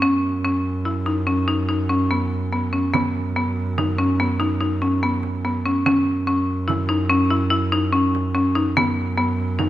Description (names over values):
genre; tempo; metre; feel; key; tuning
contemporary instrumental, chamber music in an uneven meter; 144 BPM; 7/4; straight; unclear; A4 = 440 Hz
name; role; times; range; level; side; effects
buzzing marimba with hard mallets; arpeggios; 0.0-9.7 s; B3 to E4; -20 LUFS; left 1 dB; none
bright double bass; bass; 0.0-9.7 s; F#2; -24 LUFS; right 1 dB; none
frame drum; percussion; 2.9-9.7 s; none; -30 LUFS; right 7 dB; none
room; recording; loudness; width
light reverb; close, detailed microphones; -18 LUFS; side -14 dB against mid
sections
0.0-9.7 A section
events
none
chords
0.0 F#5; 2.9 Badd9/F#; 5.8 C#m/F#; 8.8 B5/F#